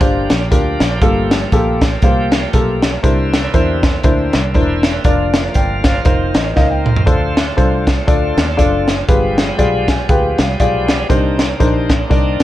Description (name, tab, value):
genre	uptempo gospel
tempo	119 BPM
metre	4/4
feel	swing 59% on 8ths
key	unclear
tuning	A4 = 440 Hz
part	dark grand piano	accompaniment	0.0-12.4 s	G2 to Ab5	-17 LUFS	left 2 dB	none
part	bright tonewheel organ	sustained chords	0.0-12.4 s	D3 to G4	-23 LUFS	right 2 dB	slow rotary speaker, overdrive
part	fingered electric bass	bass	0.0-12.4 s	E1 to E2	-20 LUFS	equal	none
part	crisp fusion drum kit	drums	0.0-12.4 s	hi-hat, kick drum, snare drum, toms	-15 LUFS	equal	none
room	little or no reverb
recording	worn, warbling old tape, cassette tape, warbly pitch drift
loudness	-12 LUFS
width	side -14 dB against mid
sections	0.0-12.4 A section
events	grand piano fill 6.1-7.1, 9.6-11.1; drum fill 6.6-7.1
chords	0.0 Bb6; 1.0 Gm9; 3.0 C9; 5.1 Bb/F; 6.1 F7sus4; 7.1 Dm7; 9.1 G7b9; 11.1 Cm9